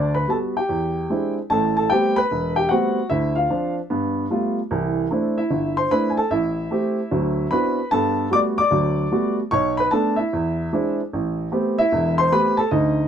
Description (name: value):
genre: solo jazz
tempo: 150 BPM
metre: 4/4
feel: swing 65% on 8ths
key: unclear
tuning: A4 = 440 Hz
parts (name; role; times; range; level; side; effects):
- warm upright piano; solo; 0.0-13.1 s; E1 to D6; -19 LUFS; equal; none
room: light reverb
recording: none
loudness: -19 LUFS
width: side -8 dB against mid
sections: 0.0-1.5 A section; 1.5-13.1 B section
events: none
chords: 0.0 Gmaj7; 0.7 E7alt; 1.5 Am9; 3.1 Dm7; 3.9 G9; 4.7 C69; 6.3 Am7; 7.1 D13; 7.9 Gmaj9; 9.5 Bm11; 10.3 E7b13; 11.1 Am9